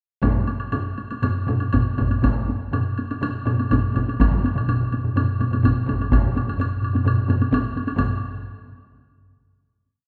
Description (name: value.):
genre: japanese traditional, taiko drum ensemble.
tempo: 119-137 BPM.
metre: 4/4.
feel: straight.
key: none.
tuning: none.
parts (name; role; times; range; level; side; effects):
taiko ensemble; percussion; 0.2-8.2 s; none; -29 LUFS; equal; none.
taiko ensemble; percussion; 0.2-8.4 s; none; -27 LUFS; equal; none.
taiko ensemble; percussion; 0.2-8.4 s; none; -28 LUFS; equal; none.
taiko ensemble; percussion; 0.2-8.2 s; none; -27 LUFS; equal; none.
woodblock; percussion; 0.2-8.2 s; none; -34 LUFS; equal; none.
room: wet scoring stage reverb, RT60 1.9 s.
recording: none.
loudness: -22 LUFS.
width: mono.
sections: 0.2-8.0 A section; 8.0-9.8 final hit.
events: speeding up 0.2-9.8.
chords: none.